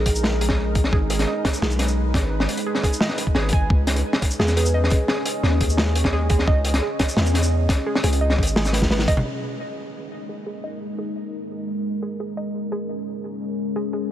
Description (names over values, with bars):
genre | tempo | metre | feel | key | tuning
half-time drum and bass | 173 BPM | 4/4 | half-time | G# minor | A4 = 440 Hz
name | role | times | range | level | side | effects
kalimba | melody | 0.0-0.2, 4.4-4.7 s | G#4 to B4 | -31 LUFS | right 1 dB | digital delay
deep dark ambient pad | sustained chords | 0.0-14.1 s | G#3 to D#5 | -28 LUFS | equal | chorus, built-in reverb, sidechain pumping
warbly dusty pluck | arpeggios | 0.0-14.1 s | G#4 to G#5 | -30 LUFS | right 3 dB | chorus, cassette tape, digital delay
long sustained 808-style bass | bass | 0.0-9.2 s | G#1 to E2 | -21 LUFS | equal | none
crunchy breakbeat drum kit | drums | 0.1-9.2 s | hi-hat, shaker, snare drum, toms | -24 LUFS | equal | low-pass filter on hats, low-pass filter on snare, low-pass filter on toms, low-pass filter on perc, low-pass filter on room
electronic kick drum | drums | 0.1-9.1 s | none | -21 LUFS | equal | none
room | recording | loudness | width
light reverb, studio reverb | none | -19 LUFS | side -12 dB against mid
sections
0.0-9.3 A section; 9.3-14.1 B section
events
drop 0.0-9.3; drum fill 8.7-9.3; band accent 8.9; filter sweep on drum 9.3-14.1; filter sweep on synth pluck 9.3-14.1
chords
0.0 G#m; 3.7 C#madd9; 9.3 G#5